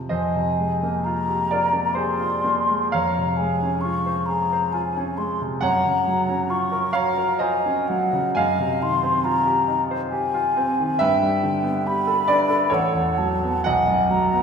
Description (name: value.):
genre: classical, impressionist duo for flute and grand piano.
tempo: 60-70 BPM.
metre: 3/4.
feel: rubato.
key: unclear.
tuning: A4 = 440 Hz.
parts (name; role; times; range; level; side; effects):
clear concert grand piano; accompaniment; 0.0-14.4 s; A1 to Ab5; -22 LUFS; right 1 dB; none.
mellow hollow concert flute; melody; 0.1-14.4 s; Eb5 to Db6; -22 LUFS; left 2 dB; none.
room: wet recital hall reverb, RT60 1.7 s.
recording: heard from further back in the room.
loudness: -19 LUFS.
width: side -6 dB against mid.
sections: 0.1-14.4 A section.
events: none.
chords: 0.1 Fm11; 2.9 Dbmaj7/F; 5.6 Gbmaj7; 8.4 Fm9/Gb; 11.0 G69; 12.7 A69; 13.7 B6.